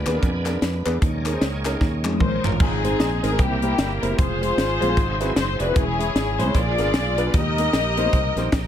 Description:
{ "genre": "uptempo gospel", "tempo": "152 BPM", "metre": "4/4", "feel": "swing 60% on 8ths", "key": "Ab major", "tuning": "A4 = 440 Hz", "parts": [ { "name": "clear grand piano", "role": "accompaniment", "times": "0.0-8.7 s", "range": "Ab2 to Eb5", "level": "-27 LUFS", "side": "right 1 dB", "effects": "none" }, { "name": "bright tonewheel organ", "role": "sustained chords", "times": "0.0-8.7 s", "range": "Gb3 to Cb6", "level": "-33 LUFS", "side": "right 3 dB", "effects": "slow rotary speaker, chorus vibrato" }, { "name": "warm French horn section", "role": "sustained chords", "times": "0.0-2.6 s", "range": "D3 to Cb5", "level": "-34 LUFS", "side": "right 2 dB", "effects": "none" }, { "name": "fingered electric bass", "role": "bass", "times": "0.0-8.7 s", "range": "Fb1 to F2", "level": "-26 LUFS", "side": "equal", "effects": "none" }, { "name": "crisp fusion drum kit", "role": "drums", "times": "0.1-8.6 s", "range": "crash cymbal, hi-hat, kick drum, snare drum, toms", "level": "-23 LUFS", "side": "equal", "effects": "none" }, { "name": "group handclap", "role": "percussion", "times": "0.1-2.5 s", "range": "none", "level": "-33 LUFS", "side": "left 5 dB", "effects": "none" }, { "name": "warm studio string section", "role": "melody", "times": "2.2-8.7 s", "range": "Bb3 to Eb5", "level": "-23 LUFS", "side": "left 3 dB", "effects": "none" } ], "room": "light reverb, small room ambience", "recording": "none", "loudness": "-19 LUFS", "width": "side -10 dB against mid", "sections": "0.0-2.6 A section; 2.6-8.7 B section", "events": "drum fill 1.8-2.6; grand piano fill 8.3-8.7", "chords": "0.0 Bb7b9; 1.0 Eb7sus4; 2.6 Ab; 3.4 C7; 4.2 Fm; 5.0 Ab7alt; 5.8 Dbm/Fb; 6.5 Bb7b9; 7.3 Eb" }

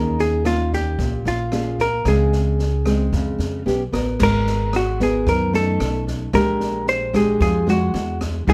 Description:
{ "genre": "bossa nova", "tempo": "112 BPM", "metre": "4/4", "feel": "straight", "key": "unclear", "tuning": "A4 = 441 Hz", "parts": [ { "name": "hollow-body jazz guitar", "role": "melody", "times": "0.0-8.5 s", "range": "F4 to B#4", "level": "-24 LUFS", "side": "equal", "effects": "none" }, { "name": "nylon-string guitar", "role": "accompaniment", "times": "0.0-8.5 s", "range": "Bb2 to Bb4", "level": "-25 LUFS", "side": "equal", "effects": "none" }, { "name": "upright bass", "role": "bass", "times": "0.0-8.5 s", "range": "G#1 to F#2", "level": "-25 LUFS", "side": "equal", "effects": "none" }, { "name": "open jazz drum kit", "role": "drums", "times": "0.2-8.5 s", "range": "crash cymbal, kick drum, rim click, snare drum", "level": "-30 LUFS", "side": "equal", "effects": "none" } ], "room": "light reverb", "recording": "none", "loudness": "-20 LUFS", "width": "mono", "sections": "0.0-4.2 A section; 4.2-8.5 B section", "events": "none", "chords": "0.0 Eb7sus4; 2.1 Dbmaj7; 3.7 A13; 4.2 G#m9; 5.8 B9; 6.3 A#6; 7.9 E9" }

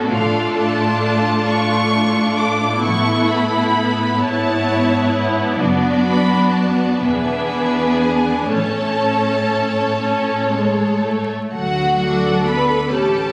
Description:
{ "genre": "classical, slow romantic movement for string orchestra", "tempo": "39-45 BPM (dotted quarters)", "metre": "6/8", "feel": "rubato", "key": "A major", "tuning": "A4 = 439 Hz", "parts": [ { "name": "warm studio violin section", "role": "second line", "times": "0.0-13.3 s", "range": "E4 to D5", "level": "-24 LUFS", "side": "equal", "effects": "none" }, { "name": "rich studio viola section", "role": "accompaniment", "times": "0.0-13.3 s", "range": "G#3 to A4", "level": "-21 LUFS", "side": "equal", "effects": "none" }, { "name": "rich symphonic cello section", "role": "bass", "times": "0.0-13.3 s", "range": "E2 to B3", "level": "-25 LUFS", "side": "equal", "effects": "none" }, { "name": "warm studio violin section", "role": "melody", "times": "0.1-13.3 s", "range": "E5 to D6", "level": "-25 LUFS", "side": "equal", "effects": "none" }, { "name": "rich symphonic double bass section", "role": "bass", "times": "0.1-13.3 s", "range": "E1 to D2", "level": "-28 LUFS", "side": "equal", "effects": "none" } ], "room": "moderate scoring stage reverb, RT60 1.8 s", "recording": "recorded on a phone in the room, club reverb, vinyl crackle, compression", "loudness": "-17 LUFS", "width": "mono", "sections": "0.0-11.5 A section; 11.5-13.3 B section", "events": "none", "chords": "0.1 Dm/A; 2.8 A; 5.6 D/F#; 7.0 E7; 8.5 A; 11.5 D" }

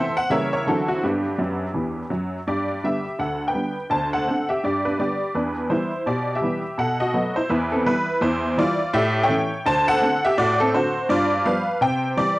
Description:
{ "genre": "jazz, stride piano", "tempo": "167 BPM", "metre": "4/4", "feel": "swing 60% on 8ths", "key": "G major, C major from 8.2 s", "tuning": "A4 = 440 Hz", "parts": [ { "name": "honky-tonk upright piano", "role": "solo", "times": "0.0-12.4 s", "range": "D2 to A5", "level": "-20 LUFS", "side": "equal", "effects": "cassette tape" } ], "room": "moderate spring reverb, RT60 1.9 s", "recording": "home recording on cassette", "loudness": "-20 LUFS", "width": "side -19 dB against mid", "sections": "0.0-2.5 A section; 2.5-12.4 B section", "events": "honky-tonk piano fill 1.4-2.5", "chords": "0.3 C#dim7; 0.7 D9; 1.0 G; 3.9 D7; 4.6 G; 5.3 Em7; 6.8 B7; 7.5 Em; 8.2 C/E; 8.9 A7; 9.7 D7; 11.1 G7; 11.8 C" }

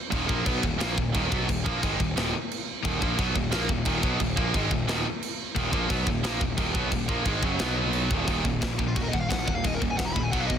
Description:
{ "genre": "heavy metal", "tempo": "176 BPM", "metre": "4/4", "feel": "straight", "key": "Eb minor", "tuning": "A4 = 440 Hz", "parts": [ { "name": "distorted electric guitar", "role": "riff", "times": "0.1-10.6 s", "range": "Eb2 to Cb4", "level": "-30 LUFS", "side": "right 11 dB", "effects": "overdrive" }, { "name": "high-gain distorted guitar", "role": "riff", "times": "0.1-10.6 s", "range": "Eb2 to Cb4", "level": "-31 LUFS", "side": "left 11 dB", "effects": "distortion" }, { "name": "fuzz picked electric bass", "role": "bass", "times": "0.1-10.6 s", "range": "Eb1 to Cb2", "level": "-31 LUFS", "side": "equal", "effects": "overdrive" }, { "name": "tight metal drum kit", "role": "drums", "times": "0.1-10.6 s", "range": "crash cymbal, kick drum, snare drum", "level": "-29 LUFS", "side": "equal", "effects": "none" }, { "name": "dark smooth lead guitar", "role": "melody", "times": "8.9-10.6 s", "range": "F4 to Cb6", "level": "-31 LUFS", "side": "left 2 dB", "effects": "overdrive" } ], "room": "small room ambience", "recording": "dense, heavily limited modern master", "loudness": "-24 LUFS", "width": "side -8 dB against mid", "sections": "0.0-8.3 A section; 8.3-10.6 B section", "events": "half time 0.0-8.3; lead electric guitar solo 8.3-10.6", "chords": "0.0 Ebm; 7.6 B5; 8.1 Eb5" }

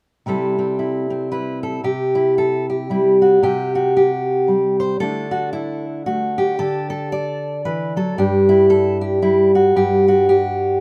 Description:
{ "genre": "folk, solo fingerstyle acoustic guitar", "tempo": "114 BPM", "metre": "3/4", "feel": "swing 60% on 8ths", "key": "unclear", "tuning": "A4 = 438 Hz", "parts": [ { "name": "fingerpicked steel-string acoustic guitar", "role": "solo", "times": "0.3-10.8 s", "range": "G2 to D5", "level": "-18 LUFS", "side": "equal", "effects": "none" } ], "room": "light reverb", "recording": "none", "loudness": "-18 LUFS", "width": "mono", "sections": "0.3-1.8 A section; 1.8-10.8 B section", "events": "none", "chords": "0.3 C6; 1.8 C; 5.0 Dsus2; 8.2 G5" }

